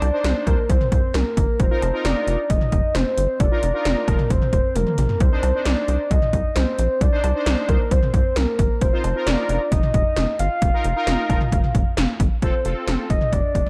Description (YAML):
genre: synth-pop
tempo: 133 BPM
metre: 4/4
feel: straight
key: unclear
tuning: A4 = 439 Hz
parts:
  - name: soft octave-layered synth lead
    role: melody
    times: 0.0-13.7 s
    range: Bb4 to F5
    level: -26 LUFS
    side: equal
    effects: chorus, analog delay
  - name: analog synth brass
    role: accompaniment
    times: 0.0-13.1 s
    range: C4 to C5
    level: -32 LUFS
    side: equal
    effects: chorus
  - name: rubbery square bass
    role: bass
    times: 0.0-13.6 s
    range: F1 to C2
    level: -25 LUFS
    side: equal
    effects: none
  - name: 80s electronic pad drums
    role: drums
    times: 0.0-13.7 s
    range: cowbell, hi-hat, kick drum, snare drum, toms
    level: -23 LUFS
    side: equal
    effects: gated reverb on snare and toms, overdrive
room: light reverb, digital ambience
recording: dark, warm production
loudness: -20 LUFS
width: mono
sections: 0.0-12.4 A section; 12.4-13.7 B section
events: drum fill 4.8-5.2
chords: 0.0 Cmadd9; 1.6 F7sus4; 5.2 Cmadd9; 8.8 F7sus4; 12.4 F